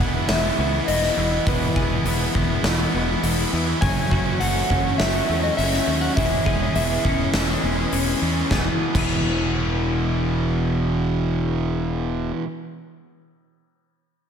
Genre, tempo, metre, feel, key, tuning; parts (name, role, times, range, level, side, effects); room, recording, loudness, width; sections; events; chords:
post-rock; 102 BPM; 4/4; straight; E major; A4 = 437 Hz
electric slide guitar; melody; 0.0-7.9 s; B4 to G#5; -26 LUFS; equal; slapback echo, tape echo
semi-hollow electric guitar; arpeggios; 0.0-12.5 s; E3 to G#4; -29 LUFS; left 2 dB; ensemble chorus, slapback echo, tape echo
distorted electric guitar; riff; 0.0-12.5 s; E2 to G#4; -28 LUFS; right 9 dB; overdrive, slapback echo
raw garage guitar; riff; 0.0-12.5 s; E3 to G#4; -28 LUFS; left 9 dB; overdrive, slapback echo
fuzz fingered electric bass; bass; 0.0-12.3 s; E1 to E2; -24 LUFS; equal; overdrive
big rock drum kit; drums; 0.0-9.1 s; crash cymbal, hi-hat, kick drum, snare drum; -24 LUFS; equal
moderate lush hall reverb, RT60 1.6 s, small room ambience; big arena sound; -19 LUFS; side -7 dB against mid
0.0-8.5 A section; 8.5-10.8 B section
0.0 C#m7/E (rootless); 3.8 F#m; 6.2 C#m7/E; 8.5 E